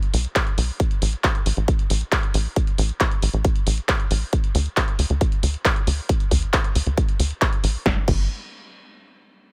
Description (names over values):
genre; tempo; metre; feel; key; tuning
uplifting trance; 136 BPM; 4/4; straight; unclear; A4 = 442 Hz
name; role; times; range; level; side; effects
punchy analog drum machine; drums; 0.0-8.2 s; crash cymbal, handclaps, hi-hat, snare drum; -28 LUFS; equal; none
tight sequencer bass; bass; 0.1-8.3 s; F#1 to D2; -24 LUFS; equal; sidechain pumping
electronic kick drum; drums; 0.4-8.2 s; none; -23 LUFS; equal; none
room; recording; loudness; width
little or no reverb; none; -22 LUFS; mono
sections
0.0-7.9 A section; 7.9-9.5 B section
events
filter sweep on analog synth bass 0.0-7.9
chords
none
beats
0.36 | 0.80 1.24 1.68 2.12 | 2.56 3.00 3.45 3.89 | 4.33 4.77 5.21 5.65 | 6.09 6.53 6.97 7.42 | 7.86